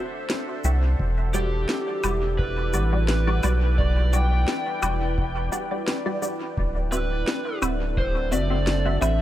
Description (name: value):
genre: ambient dub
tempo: 86 BPM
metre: 4/4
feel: swing 54% on 16ths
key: E minor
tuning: A4 = 440 Hz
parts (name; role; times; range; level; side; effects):
- deep dark ambient pad; sustained chords; 0.0-9.2 s; C4 to G5; -32 LUFS; equal; chorus, built-in reverb
- filtered dub chord stab; stabs; 0.0-9.2 s; G3 to E5; -31 LUFS; equal; phaser, ensemble chorus, dub echo
- electronic snare drum, cabasa and woodblock; drums; 0.3-9.2 s; none; -31 LUFS; left 1 dB; dub echo
- warm sub bass; bass; 0.6-9.2 s; D1 to C2; -23 LUFS; equal; none
- electronic kick drum; drums; 1.0-8.1 s; none; -28 LUFS; equal; none
- overdriven slide guitar; melody; 1.3-9.2 s; G4 to G5; -30 LUFS; equal; dub echo
room: light reverb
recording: none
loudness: -21 LUFS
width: side -13 dB against mid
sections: 0.0-9.2 A section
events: none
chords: 0.0 D9; 1.0 Em9; 6.6 D9